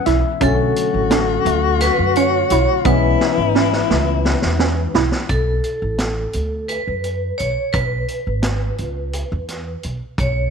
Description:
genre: progressive instrumental, band music in an uneven meter.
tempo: 172 BPM (eighths).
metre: 7/8.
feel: straight.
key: B dorian.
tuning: A4 = 440 Hz.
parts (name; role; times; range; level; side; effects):
breathy alto saxophone; second line; 0.0-4.9 s; E4 to F#4; -21 LUFS; left 12 dB; none.
barky tine electric piano; accompaniment; 0.0-5.3 s; D3 to E5; -23 LUFS; left 13 dB; overdrive.
soft round pluck; arpeggios; 0.1-5.3 s; A3 to E4; -22 LUFS; right 13 dB; chorus, slapback echo.
upright bass; bass; 0.1-10.5 s; G#1 to F#2; -21 LUFS; right 1 dB; none.
vintage drum kit; drums; 0.1-10.3 s; hi-hat, kick drum, snare drum; -23 LUFS; right 1 dB; none.
vibraphone with hard mallets; melody; 0.4-10.5 s; A4 to C#5; -22 LUFS; right 2 dB; slapback echo.
room: light reverb, studio reverb.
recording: 1960s-style stereo with parts hard left and right.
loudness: -16 LUFS.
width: side -6 dB against mid.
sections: 0.0-5.3 A section; 5.3-10.5 B section.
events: tine electric piano fill 0.0-0.4; drum fill 3.2-5.3.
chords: 0.4 Bm9; 2.9 Amaj9; 5.3 Bm7; 7.7 G#madd11.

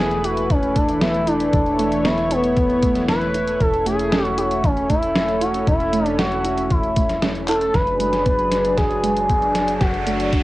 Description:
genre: synthwave.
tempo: 116 BPM.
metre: 4/4.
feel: straight.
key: unclear.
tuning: A4 = 441 Hz.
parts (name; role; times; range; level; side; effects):
expressive synth lead; melody; 0.0-10.4 s; B3 to B4; -20 LUFS; equal; chorus, vintage 12-bit sampler grit, cassette tape, plate reverb.
lush unison pad; sustained chords; 0.0-10.4 s; E3 to C#5; -24 LUFS; equal; chorus, sidechain pumping, cassette tape, plate reverb.
warbly dusty pluck; arpeggios; 0.0-10.4 s; E3 to E4; -28 LUFS; right 4 dB; chorus, cassette tape, tape echo.
tight sequencer bass; bass; 0.0-10.4 s; E1 to F#1; -30 LUFS; equal; none.
detuned 8-bit digital drum machine; drums; 0.1-10.4 s; handclaps, hi-hat, snare drum; -26 LUFS; equal; cassette tape.
electronic kick drum; drums; 0.5-10.4 s; none; -20 LUFS; equal; cassette tape.
riser; sound effects; 8.5-10.4 s; none; -32 LUFS; right 1 dB; none.
room: wet booth ambience, RT60 0.2 s.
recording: home recording on cassette.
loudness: -17 LUFS.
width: side -17 dB against mid.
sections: 0.0-7.7 A section; 7.7-10.4 B section.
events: drum fill 7.5, 7.7-10.4; riser 8.5-10.4.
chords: 0.0 Esus4; 3.6 A/E; 7.7 E7/F# (rootless); 9.8 D/F#.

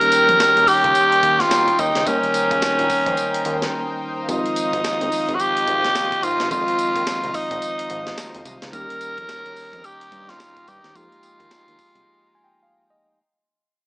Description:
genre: R&B, new jack swing.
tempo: 108 BPM.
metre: 4/4.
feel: swing 61% on 16ths.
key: F minor.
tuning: A4 = 440 Hz.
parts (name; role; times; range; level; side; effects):
raspy tenor saxophone; melody; 0.0-12.9 s; Db4 to Bb4; -18 LUFS; equal; none.
tine electric piano; accompaniment; 0.0-13.2 s; Eb3 to Ab5; -29 LUFS; equal; medium stereo tremolo.
warm studio string section; sustained chords; 0.0-13.2 s; Ab3 to Bb5; -29 LUFS; equal; none.
breakbeat sampler-style drum kit; drums; 0.0-12.1 s; hi-hat, kick drum, snare drum, tambourine; -29 LUFS; equal; none.
fat analog bass; bass; 0.3-12.0 s; F1 to G2; -30 LUFS; equal; none.
room: moderate echo chamber reverb, RT60 1.4 s, digital ambience.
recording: small speaker sound.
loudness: -16 LUFS.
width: side -31 dB against mid.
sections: 0.0-13.2 A section.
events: fade-out 0.0-13.2; break 3.7-4.3, 12.1-13.2; tine electric piano fill 12.1-13.2.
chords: 0.0 Eb7; 4.3 Fm7; 8.7 Eb7; 11.0 Fm11.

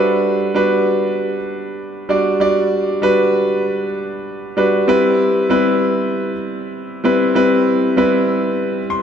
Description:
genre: pop.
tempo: 97 BPM.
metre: 4/4.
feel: straight.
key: G major.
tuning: A4 = 440 Hz.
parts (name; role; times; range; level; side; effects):
clear concert grand piano; solo; 0.0-9.0 s; G3 to C6; -14 LUFS; equal; none.
room: wet lush hall reverb, RT60 3.0 s.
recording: none.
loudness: -14 LUFS.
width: side -8 dB against mid.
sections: 0.0-9.0 A section.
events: grand piano fill 8.6-9.0.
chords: 0.0 Gmaj7; 4.9 Cmaj7/G.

